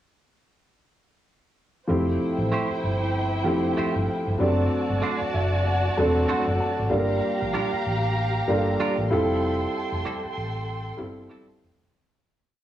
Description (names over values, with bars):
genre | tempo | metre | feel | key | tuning
soul | 96 BPM | 4/4 | swing 58% on 16ths | F major | A4 = 437 Hz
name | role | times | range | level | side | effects
warm studio violin section | second line | 1.9-11.9 s | E4 to C6 | -29 LUFS | right 2 dB | cassette tape
warm grand piano | accompaniment | 1.9-12.0 s | F3 to A5 | -25 LUFS | equal | cassette tape
hollow-body short-scale fingered electric bass | bass | 1.9-11.9 s | E1 to Bb1 | -27 LUFS | equal | none
semi-hollow electric guitar | riff | 2.5-11.5 s | G3 to C5 | -28 LUFS | right 5 dB | cassette tape
room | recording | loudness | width
moderate studio ambience, RT60 0.5 s | home recording on cassette, small room ambience | -22 LUFS | side -12 dB against mid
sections
1.9-11.9 A section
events
grand piano fill 5.0-6.9; fade-out 9.4-11.9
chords
1.9 Fmaj9; 4.4 D7/F#; 6.9 Gm7; 9.1 Fmaj9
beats
| 1.89 2.52 3.15 3.77 | 4.40 5.03 5.66 6.29 | 6.91 7.54 8.17 8.79 | 9.42 10.05 10.68 11.30